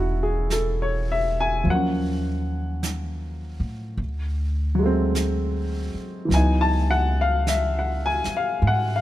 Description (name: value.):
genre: jazz ballad.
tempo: 52 BPM.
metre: 4/4.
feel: swing 69% on 8ths.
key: C# minor.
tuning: A4 = 440 Hz.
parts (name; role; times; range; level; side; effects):
warm upright piano; accompaniment; 0.0-9.0 s; E3 to A5; -24 LUFS; left 1 dB; none.
upright bass; bass; 0.0-9.0 s; E1 to A2; -24 LUFS; equal; none.
jazz brush drum kit; drums; 0.5-9.0 s; brushed snare drum, hi-hat, snare drum; -34 LUFS; right 3 dB; none.
room: little or no reverb.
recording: close, detailed microphones.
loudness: -21 LUFS.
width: side -14 dB against mid.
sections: 0.0-9.0 A section.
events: none.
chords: 0.0 Amaj9; 1.7 D#m7; 4.0 D7#11; 6.3 C#m11.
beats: 0.49 | 1.66 2.83 3.99 5.15 | 6.31 7.47 8.63.